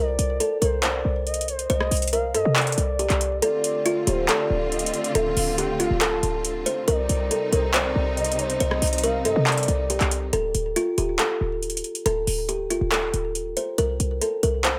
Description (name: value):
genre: hip hop, trap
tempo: 139 BPM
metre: 4/4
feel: half-time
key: D phrygian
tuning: A4 = 440 Hz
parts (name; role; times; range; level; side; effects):
- kalimba; melody; 0.0-14.8 s; F4 to C5; -27 LUFS; equal; none
- gliding portamento lead; second line; 0.0-10.3 s; C5 to A5; -31 LUFS; equal; chorus, phaser, delay
- short 808-style bass; bass; 0.0-14.8 s; D1 to C3; -29 LUFS; equal; none
- booming analog drum machine; drums; 0.2-14.7 s; handclaps, hi-hat, rim click; -28 LUFS; equal; overdrive
- clear symphonic string section; sustained chords; 3.4-10.3 s; C3 to F4; -33 LUFS; equal; none
room: little or no reverb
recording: none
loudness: -23 LUFS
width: mono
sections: 0.0-10.3 A section; 10.3-14.8 B section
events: kick muted 3.4-3.9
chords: 0.0 Cmadd9; 3.4 Dm7; 6.9 Cmadd9; 10.3 D5; 13.8 C5